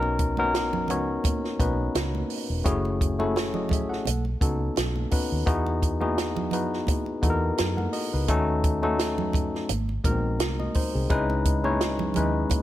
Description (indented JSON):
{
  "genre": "lush 1970s-style soul",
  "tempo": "85 BPM",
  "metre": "4/4",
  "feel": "swing 54% on 16ths",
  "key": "unclear",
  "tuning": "A4 = 436 Hz",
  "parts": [
    { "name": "tine electric piano", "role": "accompaniment", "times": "0.0-12.6 s", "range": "G#3 to F#5", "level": "-26 LUFS", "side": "left 2 dB", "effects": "overdrive" },
    { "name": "vintage muted fingered electric bass", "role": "bass", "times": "0.0-12.4 s", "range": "E1 to F#2", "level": "-29 LUFS", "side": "equal", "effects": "none" },
    { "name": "congas", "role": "percussion", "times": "0.0-12.6 s", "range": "none", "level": "-35 LUFS", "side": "right 6 dB", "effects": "none" },
    { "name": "compact cocktail drum kit", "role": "drums", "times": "0.2-12.6 s", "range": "hi-hat, kick drum, snare drum", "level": "-27 LUFS", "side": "right 1 dB", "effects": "none" }
  ],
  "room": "small room reverb",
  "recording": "none",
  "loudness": "-23 LUFS",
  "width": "side -14 dB against mid",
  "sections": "0.0-12.6 A section",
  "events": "none",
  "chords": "0.0 Bmaj7; 2.7 F#m7; 4.1 B7; 5.5 Emaj7; 8.3 D#m7b5; 9.7 G#7; 11.1 C#m7",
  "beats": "0.55 1.25 1.96 | 2.66 3.36 4.07 4.77 | 5.47 6.18 6.88 7.59 | 8.29 8.99 9.70 10.40 | 11.11 11.81 12.51"
}